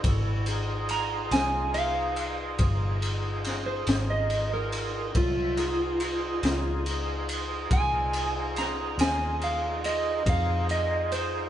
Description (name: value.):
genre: slow blues.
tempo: 47 BPM (dotted quarters).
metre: 12/8.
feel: straight.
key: F minor.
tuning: A4 = 440 Hz.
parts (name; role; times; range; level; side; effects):
bright tonewheel organ; sustained chords; 0.0-11.5 s; Gb3 to E5; -33 LUFS; left 1 dB; chorus vibrato, slow rotary speaker.
vintage muted fingered electric bass; bass; 0.0-11.5 s; G1 to F2; -31 LUFS; equal; none.
crunchy breakbeat drum kit; drums; 0.0-11.3 s; kick drum, ride cymbal, snare drum; -30 LUFS; left 1 dB; none.
electric slide guitar; second line; 0.9-11.5 s; F4 to Bb5; -29 LUFS; right 2 dB; none.
room: moderate stone room reverb, RT60 1.0 s.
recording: band playing live in one room, nothing above 11.0 kHz.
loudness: -25 LUFS.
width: side -11 dB against mid.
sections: 0.0-11.5 A section.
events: electric slide guitar solo 0.0-11.5.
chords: 0.0 Fm7.